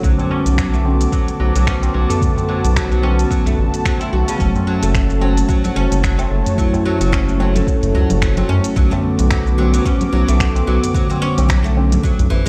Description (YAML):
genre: organic downtempo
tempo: 110 BPM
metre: 4/4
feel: swing 56% on 16ths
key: unclear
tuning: A4 = 440 Hz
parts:
  - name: muted felt-like synth keys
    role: accompaniment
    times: 0.0-12.5 s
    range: D3 to E4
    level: -25 LUFS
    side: equal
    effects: chorus, sidechain pumping, tape echo
  - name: warm analog pad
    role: sustained chords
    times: 0.0-12.5 s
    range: A3 to D6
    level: -26 LUFS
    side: equal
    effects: chorus, sidechain pumping
  - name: oud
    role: arpeggios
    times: 0.0-12.5 s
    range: C#3 to F#4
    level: -26 LUFS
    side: equal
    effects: low-pass filter, tape echo
  - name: round analog bass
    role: bass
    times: 0.0-12.4 s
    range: F#1 to F#2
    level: -18 LUFS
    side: equal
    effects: sidechain pumping
  - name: electronic kick drum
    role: drums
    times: 0.0-12.2 s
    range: none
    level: -21 LUFS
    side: equal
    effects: studio ambience
  - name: organic electronic drum kit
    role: drums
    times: 0.0-12.5 s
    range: congas, finger snaps, hi-hat, shaker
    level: -28 LUFS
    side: equal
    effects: studio ambience
  - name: tabla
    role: percussion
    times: 0.2-12.3 s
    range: none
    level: -28 LUFS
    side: equal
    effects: none
room: moderate recital hall reverb, RT60 1.4 s, digital ambience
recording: played on a big sound system in a bare room, large studio reverb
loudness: -16 LUFS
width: mono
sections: 0.0-12.5 A section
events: none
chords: 0.0 Bm7; 4.4 F#m; 8.8 Bm7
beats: | 0.04 0.58 1.13 1.68 | 2.22 2.77 3.31 3.86 | 4.40 4.95 5.49 6.04 | 6.58 7.13 7.67 8.22 | 8.77 9.31 9.86 10.40 | 10.95 11.49 12.04